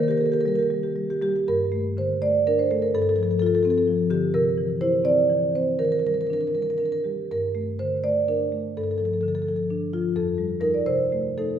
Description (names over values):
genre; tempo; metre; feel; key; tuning
classical, contemporary piece for solo marimba; 76-88 BPM (dotted quarters); 6/8; rubato; G minor; A4 = 440 Hz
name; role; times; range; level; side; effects
marimba with soft mallets; solo; 0.0-11.6 s; F2 to D5; -21 LUFS; equal; none
room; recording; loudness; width
wet recital hall reverb, RT60 1.5 s; heard from further back in the room; -21 LUFS; side -9 dB against mid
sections
0.0-1.5 A section; 1.5-11.6 B section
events
none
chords
0.0 Eb; 1.5 Gmadd9; 2.9 Dm7/G; 4.3 C9; 5.8 Ebmaj7; 7.3 Gmadd9; 8.8 Dm/G; 10.1 F9; 10.9 Cm6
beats
0.69 | 1.47 2.21 | 2.93 3.64 | 4.35 5.05 | 5.79 6.55 | 7.30 8.03 | 8.76 9.46 | 10.14 10.86